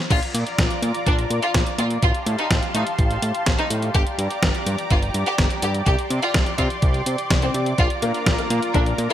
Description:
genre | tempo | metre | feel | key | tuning
italo disco | 125 BPM | 4/4 | straight | Bb major | A4 = 439 Hz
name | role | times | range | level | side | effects
warm grand piano | stabs | 0.0-0.1, 8.0-9.1 s | Bb3 to Bb4 | -26 LUFS | left 3 dB | analog chorus
rich studio violin section | melody | 0.1-9.1 s | C4 to G4 | -27 LUFS | equal | digital delay
lush unison pad | sustained chords | 0.1-9.1 s | F4 to D6 | -27 LUFS | equal | chorus
fat analog bass | bass | 0.1-9.1 s | G1 to C3 | -25 LUFS | equal | tube saturation
clean 12-bit digital drum machine | drums | 0.1-9.1 s | crash cymbal, hi-hat, snare drum | -25 LUFS | equal | small room ambience, gated reverb
electronic kick drum | drums | 0.1-8.8 s | none | -21 LUFS | equal | small room ambience
room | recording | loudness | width
light reverb, digital ambience | bright 1980s-style digital production | -18 LUFS | side -11 dB against mid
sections
0.1-9.1 A section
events
none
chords
0.1 Bb; 2.0 Fadd9/A; 3.9 Gm; 5.9 Csus2; 7.8 Bb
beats
| 0.10 0.58 1.06 1.54 | 2.02 2.50 2.98 3.46 | 3.94 4.42 4.91 5.38 | 5.87 6.34 6.83 7.30 | 7.79 8.27 8.74

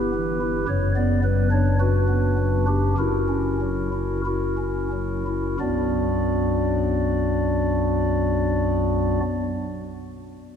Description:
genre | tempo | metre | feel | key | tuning
classical, chorale-style piece for pipe organ | 44-56 BPM | 4/4 | rubato | B minor | A4 = 440 Hz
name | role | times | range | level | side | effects
pipe organ, stopped flute | solo | 0.0-9.2 s | F#1 to D5 | -20 LUFS | equal | none
room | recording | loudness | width
wet church reverb, RT60 3.7 s | none | -20 LUFS | side -8 dB against mid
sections
0.0-5.6 A section; 5.6-10.6 B section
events
slowing down 0.0-5.6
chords
0.0 Em/G; 0.7 Bm/F#; 3.0 F#7; 5.6 Bm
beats
| 0.69 1.81 2.99 4.25 | 5.61 6.96 8.32

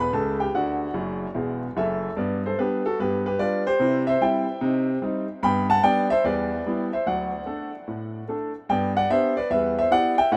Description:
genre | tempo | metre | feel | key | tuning
jazz, stride piano | 147 BPM | 4/4 | swing 66% on 8ths | G major | A4 = 440 Hz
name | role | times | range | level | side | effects
clear concert grand piano | solo | 0.0-10.4 s | E1 to B5 | -24 LUFS | equal | none
room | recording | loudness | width
light reverb | none | -24 LUFS | mono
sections
0.0-2.2 A section; 2.2-10.4 B section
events
grand piano fill 0.9-2.2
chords
0.0 A7; 0.5 D; 2.2 G; 3.0 G7; 3.8 C; 4.6 Cm; 5.4 G; 6.2 Em; 7.1 D; 8.7 G; 9.5 Em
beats
0.14 | 0.54 0.95 1.35 1.76 | 2.17 2.57 2.98 3.39 | 3.79 4.20 4.61 5.02 | 5.42 5.83 6.24 6.64 | 7.05 7.46 7.87 8.27 | 8.68 9.09 9.50 9.90 | 10.31

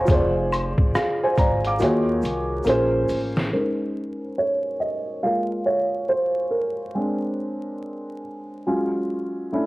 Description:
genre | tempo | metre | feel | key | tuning
lo-fi hip hop | 70 BPM | 4/4 | swing 64% on 16ths | Bb minor | A4 = 440 Hz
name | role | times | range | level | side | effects
felt-muted upright piano | accompaniment | 0.0-9.7 s | Eb3 to Eb6 | -22 LUFS | equal | cassette tape, low-pass filter
upright bass | bass | 0.0-3.5 s | F1 to Eb2 | -26 LUFS | equal | none
trip hop sampler-style drum kit | drums | 0.1-3.5 s | hi-hat, kick drum, rim click, snare drum | -23 LUFS | equal | cassette tape
tube shaker and woodblock | percussion | 0.1-3.3 s | none | -31 LUFS | left 2 dB | none
room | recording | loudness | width
light reverb, small room ambience | home recording on cassette, vinyl crackle | -21 LUFS | side -19 dB against mid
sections
0.0-3.5 A section; 3.5-9.7 B section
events
drum fill 1.8-3.5; felt piano solo 3.5-9.7; filter sweep on felt piano 3.5-9.7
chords
0.1 Fm6; 1.8 Ebm11; 2.7 Bbm7; 3.5 Bbm11; 5.2 Ab69; 6.9 Bb7; 8.7 Dbadd11/Gb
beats
| 0.09 0.94 1.80 2.66 | 3.51 4.37 5.23 6.08 | 6.94 7.80 8.66 9.51

